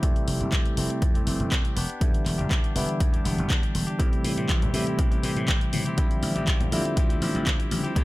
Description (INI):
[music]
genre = filtered disco house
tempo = 121 BPM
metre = 4/4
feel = straight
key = unclear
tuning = A4 = 439 Hz
[part]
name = barky tine electric piano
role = accompaniment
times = 0.0-8.0 s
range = C3 to E4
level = -28 LUFS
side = equal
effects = phaser, sidechain pumping, low-pass filter
[part]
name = direct-recorded clean electric guitar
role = riff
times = 0.0-8.0 s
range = E3 to G4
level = -35 LUFS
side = left 2 dB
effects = sidechain pumping, low-pass filter
[part]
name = slap bass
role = bass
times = 0.0-8.0 s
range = E1 to A2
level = -30 LUFS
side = equal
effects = sidechain pumping, low-pass filter
[part]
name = electronic kick drum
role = drums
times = 0.0-8.0 s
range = none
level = -24 LUFS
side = equal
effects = none
[part]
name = punchy analog drum machine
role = drums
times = 0.0-8.0 s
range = handclaps, hi-hat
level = -31 LUFS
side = equal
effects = sidechain pumping on hats
[part]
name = tube shaker and congas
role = percussion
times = 4.0-8.0 s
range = none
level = -33 LUFS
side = left 3 dB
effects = sidechain pumping on perc, low-pass filter on perc
[sound]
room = little or no reverb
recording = none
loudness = -22 LUFS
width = side -19 dB against mid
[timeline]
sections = 0.0-8.0 A section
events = filter sweep 0.0-8.0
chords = 0.0 Fmaj9; 1.8 Em7; 4.0 Am7; 6.0 Dm11